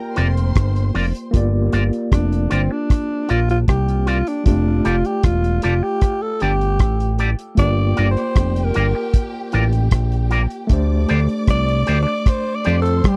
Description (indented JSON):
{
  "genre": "lovers rock reggae",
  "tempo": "77 BPM",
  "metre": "4/4",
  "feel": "straight",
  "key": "G minor",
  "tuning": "A4 = 440 Hz",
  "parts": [
    { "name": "growling alto saxophone", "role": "melody", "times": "0.0-13.2 s", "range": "C4 to G5", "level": "-25 LUFS", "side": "equal", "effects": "tape echo" },
    { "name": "mellow horn section", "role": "second line", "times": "0.0-0.9 s", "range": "Bb3 to Bb4", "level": "-38 LUFS", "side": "equal", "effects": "none" },
    { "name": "warm studio string section", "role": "second line", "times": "0.0-1.3, 7.6-13.2 s", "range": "G4 to D6", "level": "-35 LUFS", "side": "equal", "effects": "none" },
    { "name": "tine electric piano", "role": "accompaniment", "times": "0.0-13.2 s", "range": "G3 to D5", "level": "-28 LUFS", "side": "equal", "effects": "fast tremolo, tape echo" },
    { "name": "electric guitar with an envelope filter", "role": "stabs", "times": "0.2-12.8 s", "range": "F4 to D5", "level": "-25 LUFS", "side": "equal", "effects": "none" },
    { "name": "fat analog bass", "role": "bass", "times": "0.2-13.2 s", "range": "E1 to G2", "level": "-20 LUFS", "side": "equal", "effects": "none" },
    { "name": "cloth-damped thuddy drum kit", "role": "drums", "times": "0.2-13.2 s", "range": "hi-hat, kick drum, rim click", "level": "-18 LUFS", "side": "equal", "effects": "none" }
  ],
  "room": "little or no reverb",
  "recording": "dry, close 1970s-style studio recording",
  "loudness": "-18 LUFS",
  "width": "mono",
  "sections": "0.0-1.3 A section; 1.3-13.2 B section",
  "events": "alto saxophone solo 1.3-13.2",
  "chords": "0.0 Gm7; 4.5 F69; 7.6 Gm7; 10.7 D7sus4",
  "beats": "0.56 | 1.34 2.12 2.90 3.68 | 4.46 5.24 6.02 6.80 | 7.58 8.36 9.14 9.92 | 10.70 11.48 12.26 13.04"
}